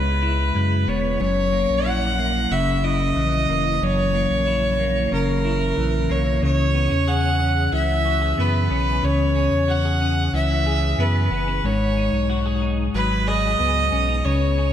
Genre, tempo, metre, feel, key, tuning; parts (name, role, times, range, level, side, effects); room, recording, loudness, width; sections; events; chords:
dream pop; 92 BPM; 4/4; straight; C# dorian; A4 = 441 Hz
rich fiddle; melody; 0.0-14.7 s; A#4 to F#5; -23 LUFS; right 1 dB; tape echo
clean electric guitar; arpeggios; 0.0-14.7 s; F#2 to G#4; -23 LUFS; left 2 dB; ensemble chorus, tape echo
sub bass with octave; bass; 0.0-14.7 s; E1 to F#2; -23 LUFS; right 1 dB
moderate plate reverb, RT60 2.5 s; dreamy mix soaked in reverb; -18 LUFS; side -10 dB against mid
0.0-14.7 A section
0.0 C#m7; 1.2 F#7; 6.4 C#m7; 11.6 G#m7